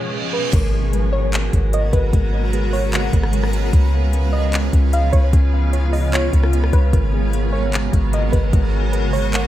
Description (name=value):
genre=hip hop, atmospheric cloud-rap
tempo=150 BPM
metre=4/4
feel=half-time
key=G# dorian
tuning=A4 = 435 Hz
part: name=warbly dusty pluck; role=melody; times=0.0-9.5 s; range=B4 to F#5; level=-26 LUFS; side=right 1 dB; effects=chorus, tape echo
part: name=granular cloud pad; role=sustained chords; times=0.0-9.5 s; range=B2 to A#4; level=-24 LUFS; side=right 1 dB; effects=built-in reverb, sidechain pumping
part: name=reverse cymbal and impact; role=sound effects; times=0.0-2.1 s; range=none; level=-30 LUFS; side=right 2 dB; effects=none
part: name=drifting glass-harmonics texture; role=texture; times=0.0-9.5 s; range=B3 to C#5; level=-34 LUFS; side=left 1 dB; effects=chorus, built-in reverb
part: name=muted felt-like synth keys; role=arpeggios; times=0.5-9.5 s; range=G#3 to B5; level=-30 LUFS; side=left 2 dB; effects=chorus, tape echo
part: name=soft 808-style bass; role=bass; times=0.5-9.5 s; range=G#1 to C#2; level=-18 LUFS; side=equal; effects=none
part: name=smooth R&B drum kit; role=drums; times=0.5-9.4 s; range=crash cymbal, handclaps, hi-hat, kick drum, rim click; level=-18 LUFS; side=equal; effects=none
room=light reverb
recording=none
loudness=-15 LUFS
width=side -13 dB against mid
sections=0.5-9.5 A section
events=reverse cymbal 0.0-0.5; impact 0.5-2.1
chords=0.0 C#7; 0.5 G#m11; 3.7 C#7; 6.9 G#m11